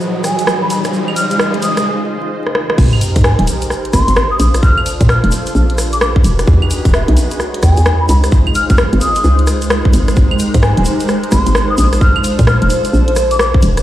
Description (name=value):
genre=UK garage, two-step garage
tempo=130 BPM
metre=4/4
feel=swing 64% on 16ths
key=Ab major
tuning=A4 = 437 Hz
part: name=warm analog pad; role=sustained chords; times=0.0-13.8 s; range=Db3 to D#5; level=-23 LUFS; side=equal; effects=chorus, sidechain pumping
part: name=tube shaker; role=percussion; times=0.0-13.8 s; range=none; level=-28 LUFS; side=left 1 dB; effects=none
part: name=riser and sub drop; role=sound effects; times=0.0-4.6 s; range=none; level=-18 LUFS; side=equal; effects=none
part: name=granular cloud pad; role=texture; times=0.0-13.8 s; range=E3 to Db5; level=-21 LUFS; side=right 1 dB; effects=built-in reverb, sidechain pumping
part: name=mellow hollow wooden flute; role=melody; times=0.2-13.5 s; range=E5 to F6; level=-19 LUFS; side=equal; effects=digital delay
part: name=garage drum kit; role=drums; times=0.2-13.8 s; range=claves, crash cymbal, hi-hat, rim click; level=-19 LUFS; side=equal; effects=none
part: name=hollow knocking FM bass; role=bass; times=2.8-13.8 s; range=Eb1 to Bb2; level=-12 LUFS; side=equal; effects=sidechain pumping
part: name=electronic kick drum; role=drums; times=2.8-13.6 s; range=none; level=-11 LUFS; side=equal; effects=none
room=light reverb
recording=played on a big sound system in a bare room, large studio reverb, vinyl crackle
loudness=-10 LUFS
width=side -13 dB against mid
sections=0.0-2.8 A section; 2.8-13.8 B section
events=build-up 0.0-2.8; riser 0.0-1.9; filter sweep on flute 0.0-2.8; filter sweep on analog synth pad 0.0-2.8; break 1.9-2.8; drum fill 2.4-2.8; drop 2.8-13.8; impact 2.8-4.6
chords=0.0 Emaj9; 0.7 Dbmaj9; 2.8 Abmaj9; 4.4 Bbmaj9; 6.2 Emaj9; 8.1 Dbmaj9; 10.2 Abmaj9; 11.8 Bbmaj9